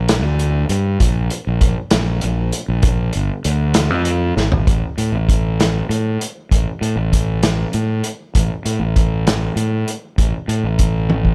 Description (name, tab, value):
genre	psychedelic rock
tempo	65 BPM (dotted quarters)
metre	6/8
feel	straight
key	unclear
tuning	A4 = 440 Hz
part	fuzz fingered electric bass	bass	0.0-11.3 s	G1 to A2	-20 LUFS	equal	overdrive
part	vintage drum kit	drums	0.1-11.3 s	hi-hat, kick drum, snare drum, toms	-20 LUFS	equal	none
room	little or no reverb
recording	none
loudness	-18 LUFS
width	mono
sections	0.0-4.7 A section; 4.7-11.3 B section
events	drum fill 4.4-4.7, 11.1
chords	none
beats	0.09 | 1.01 1.93 | 2.84 3.76 | 4.68 5.59 | 6.51 7.43 | 8.35 9.27 | 10.18 11.10